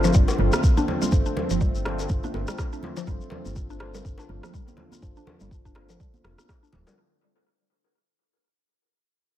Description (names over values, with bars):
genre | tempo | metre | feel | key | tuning
afro house | 123 BPM | 4/4 | swing 57% on 16ths | unclear | A4 = 439 Hz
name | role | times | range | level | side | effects
warm analog pad | sustained chords | 0.0-6.9 s | D3 to F4 | -34 LUFS | equal | chorus, sidechain pumping
mallet-like synth pluck | arpeggios | 0.0-6.9 s | F3 to D4 | -30 LUFS | left 1 dB | chorus, phaser, sidechain pumping, analog delay
tine electric piano | stabs | 0.0-7.0 s | D4 to C5 | -33 LUFS | left 1 dB | analog chorus, sidechain pumping, low-pass filter, analog delay
woody FM bass | bass | 0.0-6.8 s | D1 to G1 | -28 LUFS | equal | sidechain pumping
bongos | percussion | 0.0-7.0 s | none | -36 LUFS | left 4 dB | analog delay
shekere | percussion | 0.0-7.0 s | none | -38 LUFS | left 6 dB | none
electronic kick drum | drums | 0.1-6.6 s | none | -22 LUFS | equal | studio reverb
congas | percussion | 0.4-6.8 s | none | -33 LUFS | right 3 dB | none
electronic rim click | drums | 0.5-6.6 s | none | -33 LUFS | equal | studio reverb, analog delay
room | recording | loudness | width
light reverb, digital ambience | echo-heavy mix | -22 LUFS | side -12 dB against mid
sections
0.0-7.0 A section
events
fade-out 0.0-7.0; filter sweep on synth pluck 0.0-7.0; filter sweep on tine electric piano 0.0-7.0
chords
0.0 F6/G